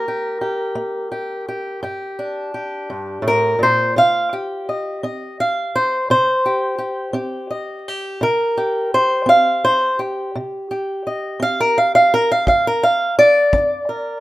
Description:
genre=acoustic country blues, solo or duo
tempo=56 BPM (dotted quarters)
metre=12/8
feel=straight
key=unclear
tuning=A4 = 437 Hz
part: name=fingerpicked swing-style acoustic guitar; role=melody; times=0.0-14.2 s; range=G2 to F5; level=-16 LUFS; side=equal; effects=none
part: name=kick drum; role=drums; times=12.5-13.7 s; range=none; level=-22 LUFS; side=equal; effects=none
room=light reverb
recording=rough home demo mix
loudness=-16 LUFS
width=side -16 dB against mid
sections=0.0-14.2 A section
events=steel-string acoustic guitar solo 0.0-14.2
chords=0.0 Gm; 4.0 C5; 12.5 Gm

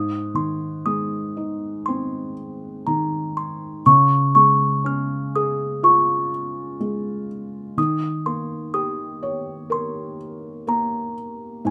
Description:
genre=children's music, lullaby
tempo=61 BPM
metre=4/4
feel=rubato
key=unclear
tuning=A4 = 440 Hz
part: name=music box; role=melody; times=0.0-11.7 s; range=Ab5 to F6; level=-22 LUFS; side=equal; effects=none
part: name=felt-muted upright piano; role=accompaniment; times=0.0-11.7 s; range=Ab2 to Db5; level=-27 LUFS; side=equal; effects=none
room=light reverb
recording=none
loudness=-22 LUFS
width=mono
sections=0.0-11.7 A section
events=none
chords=0.0 Ab; 3.9 Db; 7.8 Eb7

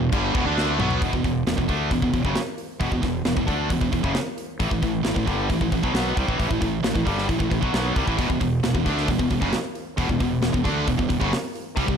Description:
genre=heavy metal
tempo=134 BPM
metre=4/4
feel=straight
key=E minor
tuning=A4 = 440 Hz
part: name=distorted electric guitar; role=riff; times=0.0-1.0, 8.2-12.0 s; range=E2 to D4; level=-29 LUFS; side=equal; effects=overdrive
part: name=heavy high-gain guitar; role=riff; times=0.0-12.0 s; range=E2 to D4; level=-26 LUFS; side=right 10 dB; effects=distortion
part: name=tight distorted guitar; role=riff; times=0.0-12.0 s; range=E2 to D4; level=-27 LUFS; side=left 13 dB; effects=distortion
part: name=fuzz fingered electric bass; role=bass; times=0.0-12.0 s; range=E1 to D2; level=-28 LUFS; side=equal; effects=overdrive
part: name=tight metal drum kit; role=drums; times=0.1-12.0 s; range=crash cymbal, hi-hat, kick drum, snare drum, toms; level=-26 LUFS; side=equal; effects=none
room=small room ambience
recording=dark, warm production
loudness=-21 LUFS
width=side -7 dB against mid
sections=0.0-1.0 A section; 1.0-12.0 B section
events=drum fill 0.6-1.0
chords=0.0 Em; 1.0 E5; 4.6 A5; 8.2 E5

